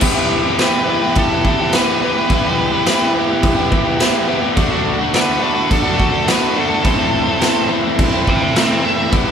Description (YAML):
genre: garage rock duo or trio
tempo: 106 BPM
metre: 4/4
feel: straight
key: E minor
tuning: A4 = 445 Hz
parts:
  - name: overdriven combo organ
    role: sustained chords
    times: 0.0-9.3 s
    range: E4 to E5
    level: -28 LUFS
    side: right 1 dB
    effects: none
  - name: overdriven electric guitar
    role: riff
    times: 0.0-9.3 s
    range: A2 to G4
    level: -16 LUFS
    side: left 1 dB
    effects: none
  - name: raw garage drum kit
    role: drums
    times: 0.0-9.3 s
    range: crash cymbal, kick drum, snare drum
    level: -17 LUFS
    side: equal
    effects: none
  - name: octave-fuzz lead guitar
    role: melody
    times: 0.6-9.1 s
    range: G4 to G5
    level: -20 LUFS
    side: equal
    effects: distortion
room: moderate large studio reverb, RT60 1.4 s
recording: band playing live in one room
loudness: -13 LUFS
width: side -7 dB against mid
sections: 0.0-9.3 A section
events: none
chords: 0.0 Em; 4.6 D; 6.8 Am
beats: | 0.02 0.59 1.16 1.73 | 2.30 2.87 3.44 4.00 | 4.57 5.14 5.71 6.28 | 6.85 7.41 7.98 8.55 | 9.12